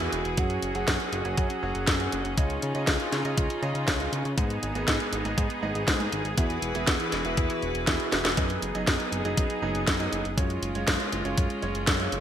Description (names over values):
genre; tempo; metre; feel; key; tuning
italo disco; 120 BPM; 4/4; straight; unclear; A4 = 440 Hz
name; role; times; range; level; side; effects
bright chamber string section; sustained chords; 0.0-12.2 s; E3 to B4; -32 LUFS; equal; low-pass filter
clear concert grand piano; stabs; 0.0-12.2 s; G#2 to F#5; -33 LUFS; right 4 dB; ping-pong delay
fat analog bass; bass; 0.0-12.2 s; E1 to C#3; -32 LUFS; equal; none
house drum kit; drums; 0.0-12.2 s; hi-hat, snare drum; -28 LUFS; equal; gated reverb
electronic kick drum; drums; 0.4-12.0 s; none; -28 LUFS; equal; overdrive
room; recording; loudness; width
moderate lush hall reverb, RT60 2.5 s; bright 1980s-style digital production; -24 LUFS; side -10 dB against mid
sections
0.0-8.4 A section; 8.4-12.2 B section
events
drum fill 8.1; band accent 8.3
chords
0.4 F#sus2; 2.4 C#add9; 4.4 G#m; 6.4 Eadd9; 8.4 G#m/F#; 10.4 C#/F#